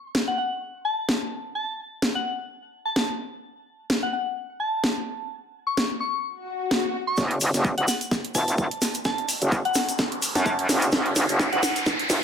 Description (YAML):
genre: bass house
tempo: 128 BPM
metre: 4/4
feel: swing 56% on 16ths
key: F# minor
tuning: A4 = 440 Hz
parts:
  - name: house drum kit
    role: drums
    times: 0.1-12.2 s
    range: hi-hat, snare drum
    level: -25 LUFS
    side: equal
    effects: none
  - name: soft synth bell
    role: melody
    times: 0.3-11.7 s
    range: F#5 to C#6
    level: -28 LUFS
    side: left 2 dB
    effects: chorus, phaser, tape echo
  - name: swell and riser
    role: sound effects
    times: 6.4-12.2 s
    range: none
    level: -30 LUFS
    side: left 1 dB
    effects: none
  - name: metallic wobble bass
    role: bass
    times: 7.2-12.2 s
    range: E1 to F#2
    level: -23 LUFS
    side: equal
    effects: chorus, overdrive, sidechain pumping, high-pass filter
  - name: electronic kick drum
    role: drums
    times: 7.2-12.2 s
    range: none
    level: -29 LUFS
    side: equal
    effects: high-pass filter on kick, high-pass filter on room
  - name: tube shaker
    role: percussion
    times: 7.2-12.2 s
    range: none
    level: -31 LUFS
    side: left 4 dB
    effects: none
room: moderate digital room reverb, RT60 1.1 s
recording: none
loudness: -23 LUFS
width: side -7 dB against mid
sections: 0.0-7.2 A section; 7.2-12.2 B section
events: swell 6.4-7.2; build-up 7.2-12.2; drum fill 7.2-12.2; riser 7.2-12.2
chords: none